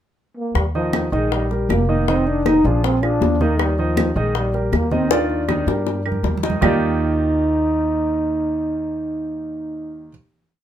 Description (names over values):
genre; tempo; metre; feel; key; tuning
Afro-Cuban jazz; 158 BPM; 4/4; straight; Eb major; A4 = 440 Hz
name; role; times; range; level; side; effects
breathy trombone; melody; 0.4-10.1 s; F3 to Eb4; -21 LUFS; equal; none
upright bass; bass; 0.5-10.1 s; F1 to G2; -23 LUFS; equal; none
bongos; percussion; 0.6-6.7 s; none; -25 LUFS; left 7 dB; none
claves; percussion; 0.6-6.7 s; none; -28 LUFS; right 6 dB; none
congas; percussion; 0.6-6.7 s; none; -26 LUFS; left 1 dB; none
warm grand piano; accompaniment; 0.8-10.1 s; Eb3 to Eb5; -23 LUFS; right 2 dB; none
room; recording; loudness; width
light reverb; minimal, uncompressed stereo recording; -17 LUFS; side -10 dB against mid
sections
0.0-0.6 pickup bar; 0.6-6.6 A section; 6.6-9.7 final chord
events
drum fill 5.1-6.6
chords
0.0 N.C.; 0.6 Ebadd9; 2.1 Fm7; 2.8 Bb7; 3.6 Ebmaj7; 6.6 Ebmaj9